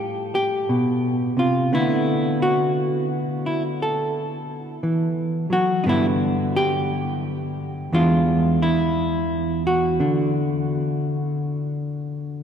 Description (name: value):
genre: solo jazz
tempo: 58 BPM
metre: 4/4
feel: swing 66% on 8ths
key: unclear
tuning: A4 = 440 Hz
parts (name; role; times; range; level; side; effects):
- hollow-body jazz guitar; solo; 0.0-12.4 s; E2 to A4; -20 LUFS; equal; none
room: wet cathedral reverb, RT60 5.2 s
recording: recorded in a church or concert hall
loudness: -20 LUFS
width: side -8 dB against mid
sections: 0.0-12.4 A section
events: none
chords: 0.0 Am7; 1.7 D69; 5.9 G; 7.9 E7; 10.0 D